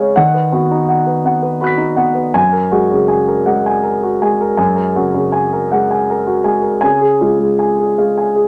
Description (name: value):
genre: neoclassical minimalist piano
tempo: 54 BPM (dotted quarters)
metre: 6/8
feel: rubato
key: F# major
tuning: A4 = 440 Hz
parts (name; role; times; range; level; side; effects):
- warm grand piano; solo; 0.0-8.5 s; F#2 to B6; -14 LUFS; equal; none
room: moderate small room reverb, RT60 0.5 s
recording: none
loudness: -14 LUFS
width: mono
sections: 0.0-8.5 A section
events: none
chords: 0.2 B/D#; 2.4 F#add9; 6.8 C#